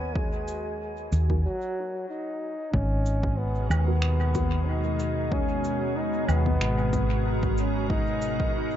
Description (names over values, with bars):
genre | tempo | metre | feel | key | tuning
ambient dub | 93 BPM | 4/4 | swing 55% on 16ths | G# minor | A4 = 444 Hz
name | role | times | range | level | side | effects
mellow trombone | melody | 0.0-8.8 s | F#3 to D#4 | -31 LUFS | equal | dub echo
soft additive organ-like pad | sustained chords | 0.0-8.8 s | B2 to G#5 | -32 LUFS | equal | ensemble chorus, built-in reverb
hollow-body short-scale fingered electric bass | bass | 0.0-8.8 s | G#1 to D#2 | -26 LUFS | equal | none
electronic kick drum | drums | 0.2-8.5 s | none | -30 LUFS | equal | overdrive
cabasa, woodblock and finger snaps | drums | 0.5-8.4 s | none | -37 LUFS | right 2 dB | dub echo
filtered dub chord stab | stabs | 1.3-8.8 s | B3 to A#4 | -38 LUFS | left 2 dB | none
room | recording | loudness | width
light reverb, small room ambience | echo-heavy mix, nothing above 7.7 kHz | -24 LUFS | side -10 dB against mid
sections
0.0-2.7 A section; 2.7-8.8 B section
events
break 1.4-2.7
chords
0.0 D#m; 2.7 G#m9